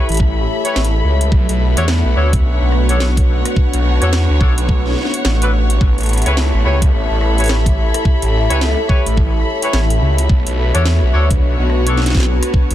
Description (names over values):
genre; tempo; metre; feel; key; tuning
glitch hop; 107 BPM; 4/4; swing 61% on 16ths; B minor; A4 = 439 Hz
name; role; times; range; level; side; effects
dark analog pad; sustained chords; 0.0-12.7 s; A3 to C#5; -24 LUFS; equal; chorus, phaser, vintage 12-bit sampler grit, sidechain pumping
clear horn section; stabs; 0.0-12.0 s; D4 to C#5; -24 LUFS; left 1 dB; vintage 12-bit sampler grit, sidechain pumping, ping-pong delay
dark studio string section; texture; 0.0-12.7 s; B3 to B5; -22 LUFS; left 2 dB; sidechain pumping
phased detuned saw bass; bass; 0.1-12.7 s; A1 to E2; -15 LUFS; equal; phaser, tube saturation
drum and bass drum kit; drums; 0.1-12.7 s; hi-hat, rim click, snare drum; -22 LUFS; equal; soft clipping on snare
electronic kick drum; drums; 0.2-12.7 s; none; -14 LUFS; equal; none
room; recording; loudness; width
little or no reverb; dense, heavily limited modern master; -12 LUFS; side -12 dB against mid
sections
0.0-12.7 A section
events
none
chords
0.0 A7; 1.3 Bm7; 5.8 A7; 10.3 Bm7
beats
0.20 0.76 | 1.32 1.88 2.44 3.00 | 3.57 4.13 4.69 5.25 | 5.81 6.37 6.93 7.49 | 8.05 8.61 9.17 9.73 | 10.29 10.86 11.42 11.98 | 12.54